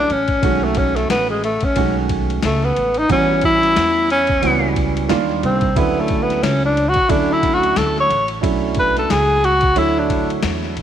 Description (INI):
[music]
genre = hip hop, jazz-hop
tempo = 90 BPM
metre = 4/4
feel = swing 58% on 16ths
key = B dorian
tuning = A4 = 440 Hz
[part]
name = breathy tenor saxophone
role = melody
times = 0.0-10.3 s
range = G#3 to C#5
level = -17 LUFS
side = left 1 dB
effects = slapback echo
[part]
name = warm concert grand piano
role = accompaniment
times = 0.0-10.7 s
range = D3 to C#5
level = -22 LUFS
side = right 8 dB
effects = none
[part]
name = upright bass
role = bass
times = 0.0-10.8 s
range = A1 to E2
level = -23 LUFS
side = equal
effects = none
[part]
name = boom bap sampler-style drum kit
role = drums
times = 0.1-10.8 s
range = hi-hat, kick drum, ride cymbal, snare drum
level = -23 LUFS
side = left 2 dB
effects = none
[sound]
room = moderate echo chamber reverb, RT60 2.6 s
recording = 1960s-style stereo, vinyl crackle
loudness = -14 LUFS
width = side -10 dB against mid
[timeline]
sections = 0.0-10.8 A section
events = tenor saxophone solo 0.0-10.8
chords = 0.4 B13; 3.1 A13; 5.1 D#maj7; 5.8 Dmaj7; 8.4 Bm11